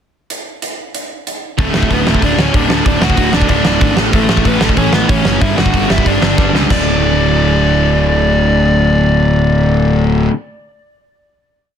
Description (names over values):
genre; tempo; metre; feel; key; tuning
punk rock; 187 BPM; 4/4; straight; unclear; A4 = 440 Hz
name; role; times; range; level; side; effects
big rock drum kit; drums; 0.3-6.8 s; hi-hat, kick drum, snare drum, splash cymbal; -16 LUFS; equal; none
bluesy overdriven lead guitar; melody; 1.6-10.0 s; A3 to F#5; -17 LUFS; left 1 dB; distortion, tape echo
overdriven semi-hollow guitar; riff; 1.6-10.3 s; D2 to A3; -18 LUFS; right 10 dB; none
sludgy distorted guitar; riff; 1.6-10.3 s; D2 to A3; -17 LUFS; left 12 dB; overdrive
fuzz picked electric bass; bass; 1.6-10.3 s; D1 to C#2; -16 LUFS; equal; overdrive
room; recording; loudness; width
little or no reverb; dense, heavily limited modern master; -10 LUFS; side -8 dB against mid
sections
0.3-1.6 pickup bar; 1.6-6.7 verse; 6.7-9.3 final chord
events
drum fill 6.4-6.7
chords
0.3 N.C.; 1.6 D; 4.0 A; 5.4 G5; 6.7 D5